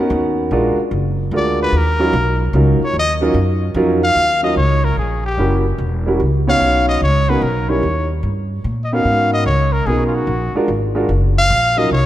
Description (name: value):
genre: jazz, small-group swing and bop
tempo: 147 BPM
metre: 3/4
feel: swing 66% on 8ths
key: Eb minor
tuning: A4 = 440 Hz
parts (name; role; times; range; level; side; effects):
- warm concert grand piano; accompaniment; 0.0-11.9 s; Gb3 to Db5; -18 LUFS; right 1 dB; none
- upright bass; bass; 0.1-12.1 s; Fb1 to Bb2; -18 LUFS; equal; none
- bright trumpet; melody; 1.4-12.1 s; F4 to F5; -18 LUFS; left 1 dB; none
room: moderate concert hall reverb, RT60 2.3 s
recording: none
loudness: -14 LUFS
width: side -13 dB against mid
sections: 0.0-4.2 A section; 4.2-12.1 B section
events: trumpet solo 0.0-4.2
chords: 0.0 Abm11 (rootless); 0.5 Bb7b13; 1.7 Ebm9; 4.2 Eb7(no3); 5.4 Gb7b9; 6.6 Bmaj7; 7.8 Eb7; 9.1 Abm11; 10.3 Bb7b13; 11.5 Ebm9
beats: 0.11 | 0.51 0.92 1.33 | 1.73 2.14 2.54 | 2.95 3.36 3.76 | 4.17 4.58 4.98 | 5.39 5.80 6.21 | 6.61 7.02 7.43 | 7.83 8.24 8.65 | 9.06 9.46 9.87 | 10.28 10.69 11.09 | 11.50 11.91